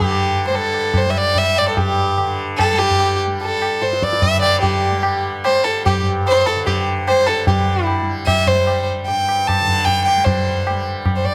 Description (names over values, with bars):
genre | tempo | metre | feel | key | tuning
indian classical, Hindustani | 148 BPM | 7/4 | straight | G raga durga | A4 = 442 Hz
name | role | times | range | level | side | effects
rich violin | melody | 0.0-11.3 s | G4 to A5 | -19 LUFS | equal | none
tanpura | drone | 0.0-11.3 s | G2 to G3 | -28 LUFS | equal | none
tabla | percussion | 0.0-11.2 s | none | -22 LUFS | equal | none
room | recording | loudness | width
wet concert hall reverb, RT60 2.1 s | none | -17 LUFS | mono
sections
0.0-7.5 A section; 7.5-11.3 B section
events
speeding up 0.0-11.3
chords
none